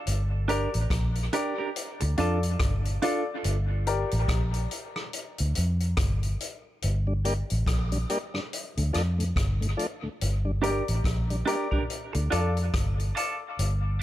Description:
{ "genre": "dub reggae", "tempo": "71 BPM", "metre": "4/4", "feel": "swing 59% on 16ths", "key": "G minor", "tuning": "A4 = 441 Hz", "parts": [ { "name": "vintage muted fingered electric bass", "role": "bass", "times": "0.1-14.0 s", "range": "G1 to F2", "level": "-26 LUFS", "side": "equal", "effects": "none" }, { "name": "vintage drum kit", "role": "drums", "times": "0.1-13.8 s", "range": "hi-hat, kick drum, rim click", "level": "-31 LUFS", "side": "left 1 dB", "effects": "none" }, { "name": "semi-hollow electric guitar", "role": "accompaniment", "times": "0.5-3.2, 10.6-14.0 s", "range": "D4 to Bb4", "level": "-32 LUFS", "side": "right 6 dB", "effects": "high-pass filter, dub echo" }, { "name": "warm baby grand piano", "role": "stabs", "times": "0.5-4.1, 10.6-13.4 s", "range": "F4 to D5", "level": "-33 LUFS", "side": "left 4 dB", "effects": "high-pass filter, dub echo" }, { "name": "tonewheel organ", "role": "accompaniment", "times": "7.1-13.5 s", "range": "D2 to D4", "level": "-34 LUFS", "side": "left 1 dB", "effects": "stopped rotary speaker, high-pass filter" } ], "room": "small room ambience", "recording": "none", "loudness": "-25 LUFS", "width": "side -14 dB against mid", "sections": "0.0-14.0 A section", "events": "break 0.0-6.8; filter sweep 10.2-14.0", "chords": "0.1 Gm; 1.7 Dm; 3.4 Gm; 5.1 Dm; 6.8 Gm; 8.5 Dm; 10.2 Gm; 11.9 Dm" }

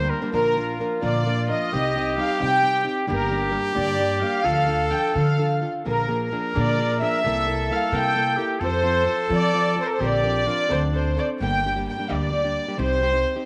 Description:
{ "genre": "mexican folk, mariachi", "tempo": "87 BPM (dotted quarters)", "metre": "6/8", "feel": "rubato", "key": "Bb major", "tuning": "A4 = 439 Hz", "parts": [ { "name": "clear trumpet", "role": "second line", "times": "0.0-11.2 s", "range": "D4 to C5", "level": "-29 LUFS", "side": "equal", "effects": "none" }, { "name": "nylon-string guitar", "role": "accompaniment", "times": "0.0-13.5 s", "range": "G2 to Bb4", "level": "-31 LUFS", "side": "equal", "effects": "none" }, { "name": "upright bass", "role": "bass", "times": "0.0-13.2 s", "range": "G1 to F3", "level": "-29 LUFS", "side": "equal", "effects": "transformer saturation" }, { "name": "warm studio violin section", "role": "melody", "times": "0.3-13.4 s", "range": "Bb4 to G5", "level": "-26 LUFS", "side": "equal", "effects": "none" } ], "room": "wet spring reverb, RT60 2.6 s", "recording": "none", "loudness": "-22 LUFS", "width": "mono", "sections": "0.3-11.4 A section; 11.4-13.5 B section", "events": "none", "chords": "0.3 Bb; 1.7 Cm; 3.1 Gm; 4.5 Dm; 5.9 Bb7; 7.2 C7; 8.6 F; 10.0 Bbadd9; 10.7 D7; 11.4 Gm; 12.8 Cm" }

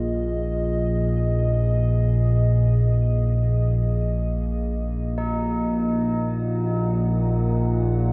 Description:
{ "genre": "dark ambient drone", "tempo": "free time", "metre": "none", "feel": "none", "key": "unclear", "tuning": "A4 = 440 Hz", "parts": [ { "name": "dark analog pad", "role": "sustained chords", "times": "0.0-8.1 s", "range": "Bb3 to Gb5", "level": "-32 LUFS", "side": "equal", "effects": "chorus, shimmer reverb" }, { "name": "analog drone", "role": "drone", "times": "0.0-8.1 s", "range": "Bb1 to Bb2", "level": "-23 LUFS", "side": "equal", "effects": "chorus" }, { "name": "tubular bells", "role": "arpeggios", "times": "5.2-8.1 s", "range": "Eb4", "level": "-34 LUFS", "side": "equal", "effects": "tape echo, shimmer reverb" } ], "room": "wet huge ambient reverb, RT60 7.7 s", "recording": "dark, warm production", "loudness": "-22 LUFS", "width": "mono", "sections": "0.0-8.1 A section", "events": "none", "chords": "0.0 Bb5; 5.2 Ebm/Bb" }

